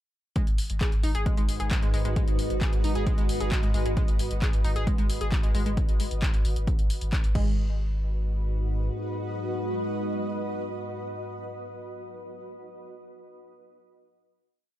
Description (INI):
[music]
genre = driving peak-time techno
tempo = 133 BPM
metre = 4/4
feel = straight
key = G# minor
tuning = A4 = 437 Hz
[part]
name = analog pluck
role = riff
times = 0.4-7.8 s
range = G#3 to G#4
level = -34 LUFS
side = equal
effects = chorus, overdrive, vintage 12-bit sampler grit, sidechain pumping, ping-pong delay
[part]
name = deep dark ambient pad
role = drone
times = 1.0-11.6 s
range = G#2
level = -36 LUFS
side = equal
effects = chorus, built-in reverb, sidechain pumping
[part]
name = electronic kick drum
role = drums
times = 0.4-7.4 s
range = none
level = -25 LUFS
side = equal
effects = none
[part]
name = punchy analog drum machine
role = drums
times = 0.4-7.4 s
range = crash cymbal, handclaps, hi-hat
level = -36 LUFS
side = left 1 dB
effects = sidechain pumping on hats, sidechain pumping on cymbals
[part]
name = granular cloud pad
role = texture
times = 1.5-11.9 s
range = F#4 to D#5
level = -35 LUFS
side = right 1 dB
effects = built-in reverb, sidechain pumping
[part]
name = saturated sub bass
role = bass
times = 0.5-8.9 s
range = G#1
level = -28 LUFS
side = equal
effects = sidechain pumping, low-pass filter
[sound]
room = little or no reverb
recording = dark, warm production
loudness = -24 LUFS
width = side -13 dB against mid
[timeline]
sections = 0.4-7.6 drop; 7.6-11.2 final note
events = drop 0.4-7.6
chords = 0.4 G#m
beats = | 0.36 0.81 1.26 1.71 | 2.16 2.61 3.07 3.52 | 3.97 4.42 4.87 5.32 | 5.77 6.22 6.67 7.13 | 7.58 8.03 8.48 8.93 | 9.38 9.83 10.28 10.73